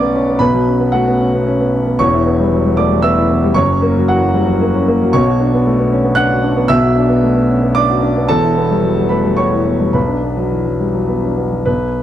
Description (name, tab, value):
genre	neoclassical minimalist piano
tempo	113 BPM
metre	3/4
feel	rubato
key	B minor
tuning	A4 = 440 Hz
part	warm concert grand piano	solo	0.0-12.0 s	E1 to F#6	-12 LUFS	equal	none
room	light reverb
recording	dry, close 1970s-style studio recording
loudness	-12 LUFS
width	side -11 dB against mid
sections	0.0-11.7 A section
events	none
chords	0.0 Bmadd9; 2.0 Em; 3.6 F#; 5.1 Bmadd9; 8.3 Em; 10.0 Bm